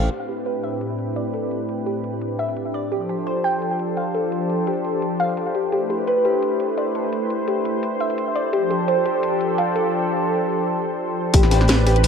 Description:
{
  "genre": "liquid drum and bass",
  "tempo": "171 BPM",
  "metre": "4/4",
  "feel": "swing 54% on 16ths",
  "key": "A minor",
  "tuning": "A4 = 441 Hz",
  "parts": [
    { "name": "lush unison pad", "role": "sustained chords", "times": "0.0-12.1 s", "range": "A2 to C5", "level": "-23 LUFS", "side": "left 1 dB", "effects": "chorus" },
    { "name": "harp-like synth pluck", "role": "arpeggios", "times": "0.0-12.0 s", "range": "G4 to G5", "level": "-24 LUFS", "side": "equal", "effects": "chorus, analog delay" },
    { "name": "dark detuned saw bass", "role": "bass", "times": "0.0-0.1, 11.3-12.1 s", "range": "A1", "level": "-17 LUFS", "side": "equal", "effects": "tube saturation" },
    { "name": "garage drum kit", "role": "drums", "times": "0.1-12.1 s", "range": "hi-hat, snare drum", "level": "-24 LUFS", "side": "equal", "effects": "low-pass filter on hats, low-pass filter on snare, low-pass filter on cymbals" },
    { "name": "crunchy breakbeat drum kit", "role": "drums", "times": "11.3-12.1 s", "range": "hi-hat, snare drum", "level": "-28 LUFS", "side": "equal", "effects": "high-pass filter on hats, high-pass filter on snare, high-pass filter on room" },
    { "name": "electronic kick drum", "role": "drums", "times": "11.3-11.4 s", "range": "none", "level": "-15 LUFS", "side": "equal", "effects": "none" }
  ],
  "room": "wet spring reverb, RT60 1.9 s, digital ambience",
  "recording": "echo-heavy mix",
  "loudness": "-19 LUFS",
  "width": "side -6 dB against mid",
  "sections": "0.1-11.3 A section",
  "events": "filter sweep on analog synth pad 0.1-11.3; break 9.9-11.3",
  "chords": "0.1 Am11; 2.9 F69; 5.7 Am11; 8.5 F69; 11.3 Am11",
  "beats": "| 0.11 0.46 0.81 1.16 | 1.51 1.86 2.21 2.57 | 2.92 3.27 3.62 3.97 | 4.32 4.67 5.02 5.37 | 5.72 6.08 6.43 6.78 | 7.13 7.48 7.83 8.18 | 8.53 8.88 9.23 9.58 | 9.93 10.29 10.64 10.99 | 11.34 11.69 12.04"
}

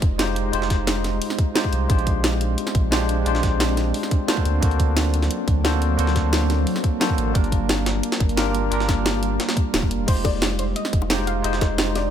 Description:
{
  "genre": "liquid drum and bass",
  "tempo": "176 BPM",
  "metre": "4/4",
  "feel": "straight",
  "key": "F dorian",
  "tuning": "A4 = 440 Hz",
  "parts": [
    { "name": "bell-like tine electric piano", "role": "accompaniment", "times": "0.0-12.1 s", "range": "Ab3 to C5", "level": "-25 LUFS", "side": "equal", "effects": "medium stereo tremolo, dub echo" },
    { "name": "ethereal airy pad", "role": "sustained chords", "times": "0.0-12.1 s", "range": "F#3 to F4", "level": "-30 LUFS", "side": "equal", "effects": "ensemble chorus, built-in reverb, sidechain pumping" },
    { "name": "warm sub bass", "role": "bass", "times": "0.0-12.1 s", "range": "D1 to D2", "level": "-23 LUFS", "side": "equal", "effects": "none" },
    { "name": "electronic kick drum", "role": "drums", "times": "0.0-11.7 s", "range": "none", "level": "-20 LUFS", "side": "equal", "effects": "small room ambience" },
    { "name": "garage drum kit", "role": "drums", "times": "0.0-12.0 s", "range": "crash cymbal, hi-hat, snare drum", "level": "-26 LUFS", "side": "equal", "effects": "small room ambience" },
    { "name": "jungle sampler-style drum kit", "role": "drums", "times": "0.0-12.0 s", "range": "hi-hat, snare drum", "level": "-30 LUFS", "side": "equal", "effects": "high-pass filter on snare, small room ambience, high-pass filter on hats" },
    { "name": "impact", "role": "sound effects", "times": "0.0-0.5 s", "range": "none", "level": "barely audible", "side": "none", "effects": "none" },
    { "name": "soft round pluck", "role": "melody", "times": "10.1-12.0 s", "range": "C5 to F5", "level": "-30 LUFS", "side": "equal", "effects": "lush chorus, ping-pong delay" },
    { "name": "bongos", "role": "percussion", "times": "10.2-11.7 s", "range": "none", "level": "-28 LUFS", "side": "left 9 dB", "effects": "none" }
  ],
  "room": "light reverb",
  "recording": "none",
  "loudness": "-19 LUFS",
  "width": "side -9 dB against mid",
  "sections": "0.0-12.1 A section",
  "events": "impact 0.0-0.5",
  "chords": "0.0 Fm9; 1.9 Bb13; 4.5 D7b13; 7.4 Gm7; 10.1 Fm9",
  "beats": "0.19 | 0.53 0.88 1.22 1.56 | 1.90 2.24 2.58 2.92 | 3.26 3.60 3.94 4.28 | 4.62 4.97 5.31 5.65 | 5.99 6.33 6.67 7.01 | 7.35 7.69 8.03 8.38 | 8.72 9.06 9.40 9.74 | 10.08 10.42 10.76 11.10 | 11.44 11.78"
}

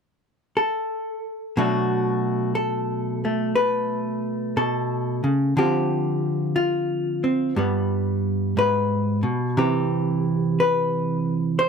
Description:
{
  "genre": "solo jazz",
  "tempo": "60 BPM",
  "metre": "4/4",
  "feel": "swing 67% on 8ths",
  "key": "unclear",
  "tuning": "A4 = 441 Hz",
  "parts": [
    { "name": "hollow-body jazz guitar", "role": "solo", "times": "0.6-11.7 s", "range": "G2 to C5", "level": "-21 LUFS", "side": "equal", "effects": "none" }
  ],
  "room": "light reverb",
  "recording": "close, detailed microphones",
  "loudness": "-21 LUFS",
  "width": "side -6 dB against mid",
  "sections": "0.0-1.6 A section; 1.6-11.7 B section",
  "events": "none",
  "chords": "0.0 N.C.; 1.6 Bm7; 5.6 Dm7; 7.6 G7b9; 9.6 Cmaj7",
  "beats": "0.55 | 1.55 2.56 3.56 4.56 | 5.56 6.56 7.56 8.56 | 9.56 10.57 11.57"
}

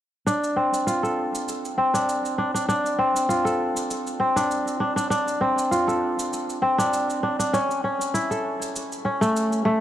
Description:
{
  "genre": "organic downtempo",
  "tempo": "99 BPM",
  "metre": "4/4",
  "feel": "swing 54% on 16ths",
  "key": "D minor",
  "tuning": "A4 = 440 Hz",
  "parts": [
    { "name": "kora", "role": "arpeggios", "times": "0.3-9.8 s", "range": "A3 to A4", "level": "-21 LUFS", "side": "equal", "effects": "low-pass filter, tape echo" },
    { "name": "cabasa", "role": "drums", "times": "0.3-9.6 s", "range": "none", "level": "-34 LUFS", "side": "right 2 dB", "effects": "none" }
  ],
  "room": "moderate huge ambient reverb, RT60 5.4 s",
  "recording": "dark, warm production",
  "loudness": "-21 LUFS",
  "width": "side -11 dB against mid",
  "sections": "0.3-9.8 A section",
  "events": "none",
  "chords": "0.3 Dm7; 7.5 A",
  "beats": "| 0.26 0.87 1.47 2.08 | 2.69 3.29 3.90 4.50 | 5.11 5.72 6.32 6.93 | 7.54 8.14 8.75 9.35"
}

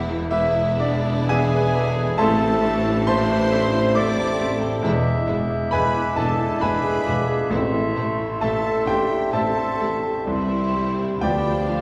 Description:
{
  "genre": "classical, romantic movement for piano and orchestra",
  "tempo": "67 BPM",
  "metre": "3/4",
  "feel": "uneven beats, rubato",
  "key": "A minor",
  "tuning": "A4 = 440 Hz",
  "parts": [
    { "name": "clear grand piano", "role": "melody", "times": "0.0-11.8 s", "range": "A1 to D6", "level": "-25 LUFS", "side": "equal", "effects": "none" },
    { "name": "clear studio violin section", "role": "melody", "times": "0.0-11.8 s", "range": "C4 to E4", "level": "-39 LUFS", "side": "equal", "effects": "none" },
    { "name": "mellow bassoon", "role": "accompaniment", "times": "0.0-11.8 s", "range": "F3 to B3", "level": "-34 LUFS", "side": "equal", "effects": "none" },
    { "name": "rich studio viola section", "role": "accompaniment", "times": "0.0-11.8 s", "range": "E3 to D4", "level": "-36 LUFS", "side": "equal", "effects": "none" },
    { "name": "mellow tuba", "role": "bass", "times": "0.0-11.8 s", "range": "E1 to D2", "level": "-32 LUFS", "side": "equal", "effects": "none" },
    { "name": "rich studio cello section", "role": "bass", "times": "0.0-11.8 s", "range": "C2 to A2", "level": "-33 LUFS", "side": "equal", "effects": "none" },
    { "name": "rich studio double bass section", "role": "bass", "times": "0.0-11.8 s", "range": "E1 to D2", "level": "-31 LUFS", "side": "equal", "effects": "none" },
    { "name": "clear oboe", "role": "second line", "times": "0.3-11.8 s", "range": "D5 to E5", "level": "-36 LUFS", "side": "equal", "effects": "none" },
    { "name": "clear studio violin section", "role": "second line", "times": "0.3-11.8 s", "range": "D5 to D6", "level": "-39 LUFS", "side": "equal", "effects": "none" },
    { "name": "mellow large flute ensemble", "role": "second line", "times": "0.3-11.8 s", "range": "B5 to D6", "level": "-35 LUFS", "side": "equal", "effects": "none" },
    { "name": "warm clarinet", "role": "second line", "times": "0.3-11.8 s", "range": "D4 to D5", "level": "-33 LUFS", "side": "equal", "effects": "none" },
    { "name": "mellow trumpet", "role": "stabs", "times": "0.3-11.8 s", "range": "D4 to D5", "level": "-34 LUFS", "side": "equal", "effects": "none" },
    { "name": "dark French horn section", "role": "sustained chords", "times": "2.2-11.6 s", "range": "B3 to F4", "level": "-35 LUFS", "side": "equal", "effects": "none" },
    { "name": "dark trombone section", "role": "sustained chords", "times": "2.2-11.6 s", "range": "D3 to A3", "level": "-34 LUFS", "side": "equal", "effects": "none" }
  ],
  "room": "wet recital hall reverb, RT60 1.9 s",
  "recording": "recorded in a church or concert hall",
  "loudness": "-21 LUFS",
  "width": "mono",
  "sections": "0.0-11.8 A section",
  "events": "none",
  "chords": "0.0 E7; 2.2 Am; 4.8 E7; 7.5 Am; 10.3 C; 11.2 Bdim/D",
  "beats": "0.31 1.29 | 2.19 3.08 3.96 | 4.84 5.72 6.62 | 7.52 8.41 9.33 | 10.27 11.21"
}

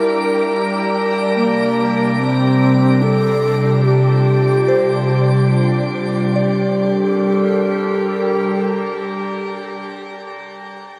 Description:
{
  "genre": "ambient",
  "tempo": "72 BPM",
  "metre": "3/4",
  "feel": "straight",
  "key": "G minor",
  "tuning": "A4 = 438 Hz",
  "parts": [
    { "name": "mellow alto flute", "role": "melody", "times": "0.0-9.6 s", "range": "Bb3 to Bb4", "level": "-22 LUFS", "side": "equal", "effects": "delay" },
    { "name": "warbly tape-like pad", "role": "sustained chords", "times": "0.0-9.6 s", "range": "C3 to A5", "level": "-20 LUFS", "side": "equal", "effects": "chorus, built-in reverb" },
    { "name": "soft synth bell", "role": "arpeggios", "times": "0.0-11.0 s", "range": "E4 to D5", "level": "-29 LUFS", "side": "equal", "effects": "chorus, phaser, delay" },
    { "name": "organ-like drone", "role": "drone", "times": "0.0-9.7 s", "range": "G3 to G4", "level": "-30 LUFS", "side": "equal", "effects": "ensemble chorus, built-in reverb" },
    { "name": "twinkling granular texture", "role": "texture", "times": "0.0-6.4 s", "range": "D5 to D6", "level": "-30 LUFS", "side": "equal", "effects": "built-in reverb" }
  ],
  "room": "wet shimmer reverb, RT60 7.5 s",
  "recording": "none",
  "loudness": "-16 LUFS",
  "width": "mono",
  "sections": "0.0-6.4 A section; 6.4-8.9 B section",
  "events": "none",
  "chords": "0.0 Gmadd9; 1.4 Csus4; 6.4 Gmadd9",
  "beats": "0.52 | 1.35 2.19 3.02 | 3.85 4.69 5.52 | 6.35 7.19 8.02"
}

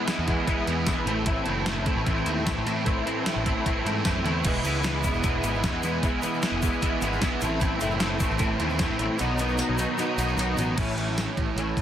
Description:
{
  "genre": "indie rock",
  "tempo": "152 BPM",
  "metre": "4/4",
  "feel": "straight",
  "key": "unclear",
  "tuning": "A4 = 439 Hz",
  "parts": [
    { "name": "soft string machine", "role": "sustained chords", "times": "0.0-10.8 s", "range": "F#4 to C6", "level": "-40 LUFS", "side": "equal", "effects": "none" },
    { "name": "overdriven electric guitar", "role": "riff", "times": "0.0-11.8 s", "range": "E2 to F#4", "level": "-29 LUFS", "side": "right 8 dB", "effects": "ensemble chorus, digital delay" },
    { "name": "twangy electric guitar", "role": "riff", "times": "0.0-11.8 s", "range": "A2 to E4", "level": "-28 LUFS", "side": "left 5 dB", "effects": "ensemble chorus" },
    { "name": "detuned 8-bit digital drum machine", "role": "drums", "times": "0.1-11.8 s", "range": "crash cymbal, hi-hat, kick drum, snare drum, tambourine, toms", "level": "-28 LUFS", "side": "equal", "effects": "soft clipping on snare" },
    { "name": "fuzz picked electric bass", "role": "bass", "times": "0.2-11.7 s", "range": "E1 to A2", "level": "-30 LUFS", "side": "equal", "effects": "overdrive" },
    { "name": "egg shaker", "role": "percussion", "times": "4.4-10.7 s", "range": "none", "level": "-43 LUFS", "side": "left 4 dB", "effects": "none" }
  ],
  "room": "light reverb",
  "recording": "dense, heavily limited modern master",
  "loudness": "-23 LUFS",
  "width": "side -10 dB against mid",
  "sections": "0.0-10.8 A section; 10.8-11.8 B section",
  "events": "drum fill 4.2; kick and snare drop out 9.2-10.8",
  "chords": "0.0 E; 1.1 Am; 4.4 E; 7.4 Am; 9.2 B; 10.8 A",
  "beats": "0.08 0.48 0.87 | 1.27 1.67 2.06 2.46 | 2.86 3.25 3.65 4.05 | 4.44 4.84 5.23 5.63 | 6.03 6.42 6.82 7.21 | 7.61 8.00 8.40 8.79 | 9.19 9.58 9.98 10.38 | 10.77 11.17 11.56"
}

